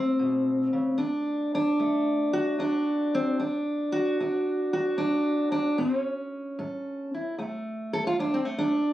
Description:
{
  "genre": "acoustic country blues, solo or duo",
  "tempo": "75 BPM",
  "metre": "4/4",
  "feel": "swing 68% on 8ths",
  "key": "D major",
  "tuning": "A4 = 440 Hz",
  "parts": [
    { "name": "fingerpicked steel-string acoustic guitar", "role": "solo", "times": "0.0-8.9 s", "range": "D2 to A4", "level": "-24 LUFS", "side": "equal", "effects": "none" }
  ],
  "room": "moderate studio reverb, RT60 0.6 s",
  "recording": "recorded on a phone in the room, studio ambience",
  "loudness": "-25 LUFS",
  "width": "side -14 dB against mid",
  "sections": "0.0-7.4 A section; 7.4-8.9 B section",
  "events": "steel-string acoustic guitar solo 7.4-8.9",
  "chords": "0.0 A; 1.0 D; 5.8 A; 7.4 D5",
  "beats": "0.19 | 0.99 1.79 2.59 3.38 | 4.18 4.99 5.78 6.58 | 7.38 8.18"
}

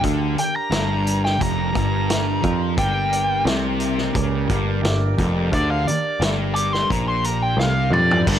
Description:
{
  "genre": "blues rock power trio and southern rock",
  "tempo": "88 BPM",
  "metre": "4/4",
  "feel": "straight",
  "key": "G minor",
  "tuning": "A4 = 441 Hz",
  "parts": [
    { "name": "percussive tonewheel organ", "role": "sustained chords", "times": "0.0-8.4 s", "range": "G3 to D5", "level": "-31 LUFS", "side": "right 2 dB", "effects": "slow rotary speaker, overdrive" },
    { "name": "thick fuzz guitar", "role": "riff", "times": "0.0-8.4 s", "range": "F2 to F3", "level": "-23 LUFS", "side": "equal", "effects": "distortion" },
    { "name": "picked electric bass", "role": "bass", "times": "0.0-8.4 s", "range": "F1 to F2", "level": "-23 LUFS", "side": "equal", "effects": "none" },
    { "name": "vintage drum kit", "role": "drums", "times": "0.0-8.4 s", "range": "crash cymbal, hi-hat, kick drum, snare drum, toms", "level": "-25 LUFS", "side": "equal", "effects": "none" },
    { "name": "bluesy overdriven lead guitar", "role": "melody", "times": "0.4-8.3 s", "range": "D5 to D6", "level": "-23 LUFS", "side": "equal", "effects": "wah, distortion, tape echo" }
  ],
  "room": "light reverb, small room ambience",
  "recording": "none",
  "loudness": "-18 LUFS",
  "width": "side -10 dB against mid",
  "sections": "0.0-8.2 A section",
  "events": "drum fill 7.6-8.2",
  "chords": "0.0 Gm",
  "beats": "| 0.03 0.71 1.40 2.08 | 2.77 3.46 4.14 4.83 | 5.51 6.20 6.88 7.57 | 8.25"
}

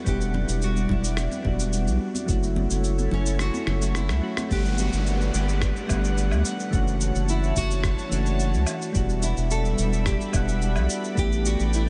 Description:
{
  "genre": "sunset chillout",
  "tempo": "108 BPM",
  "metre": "4/4",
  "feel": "straight",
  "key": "E dorian",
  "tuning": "A4 = 439 Hz",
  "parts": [
    { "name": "nylon-string guitar", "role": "melody", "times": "0.0-11.8 s", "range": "C#4 to A4", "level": "-36 LUFS", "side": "equal", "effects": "lush chorus, diffuse ambient delay" },
    { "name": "soft electric-piano-like synth keys", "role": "accompaniment", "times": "0.0-11.9 s", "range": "E3 to F#5", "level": "-32 LUFS", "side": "equal", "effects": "chorus, diffuse ambient delay" },
    { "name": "airy breathy pad", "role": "sustained chords", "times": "0.0-11.9 s", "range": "G3 to B5", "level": "-36 LUFS", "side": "equal", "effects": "chorus, vintage 12-bit sampler grit" },
    { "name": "round analog bass", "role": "bass", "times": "0.1-11.9 s", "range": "E1 to D2", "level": "-27 LUFS", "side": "equal", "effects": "none" },
    { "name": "electronic cabasa, rim click and woodblock", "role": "drums", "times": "0.1-11.8 s", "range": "none", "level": "-36 LUFS", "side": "equal", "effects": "none" },
    { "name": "electronic kick drum", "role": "drums", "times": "0.1-11.3 s", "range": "none", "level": "-29 LUFS", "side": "equal", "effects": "none" },
    { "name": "congas", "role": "percussion", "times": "0.3-4.5 s", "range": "none", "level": "-37 LUFS", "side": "equal", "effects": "none" },
    { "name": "downlifter", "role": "sound effects", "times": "4.5-8.9 s", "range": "none", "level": "-40 LUFS", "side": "equal", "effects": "none" }
  ],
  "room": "light reverb",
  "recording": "nothing above 10.8 kHz",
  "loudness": "-24 LUFS",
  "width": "mono",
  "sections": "0.0-4.5 A section; 4.5-11.9 B section",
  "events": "kick drops out 3.4-4.5; drum fill 3.7-4.5",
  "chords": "0.0 Em9; 2.3 F#m7; 4.5 Gmaj7; 6.7 Dmaj7/F#; 9.0 Em7; 11.2 A9sus4",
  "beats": "| 0.06 0.62 1.17 1.73 | 2.29 2.84 3.40 3.95 | 4.51 5.06 5.62 6.17 | 6.73 7.29 7.84 8.40 | 8.95 9.51 10.06 10.62 | 11.17 11.73"
}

